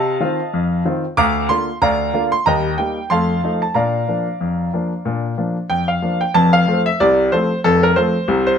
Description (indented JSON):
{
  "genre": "ragtime piano",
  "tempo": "93 BPM",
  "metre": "2/4",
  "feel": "swing 57% on 16ths",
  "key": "Bb major",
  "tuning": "A4 = 439 Hz",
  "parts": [
    { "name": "clear grand piano", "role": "solo", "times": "0.0-8.6 s", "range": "F1 to D6", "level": "-15 LUFS", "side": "equal", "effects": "none" }
  ],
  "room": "moderate studio reverb, RT60 0.5 s",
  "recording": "none",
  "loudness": "-15 LUFS",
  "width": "side -7 dB against mid",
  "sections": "0.0-6.4 A section; 6.4-8.6 B section",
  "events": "none",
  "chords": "0.0 F7/C; 1.2 Bb/D; 2.5 Eb; 3.1 F7; 3.8 Bb; 6.4 F",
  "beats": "0.54 | 1.18 1.83 | 2.47 3.11 | 3.76 4.41 | 5.06 5.71 | 6.35 7.00 | 7.64 8.29"
}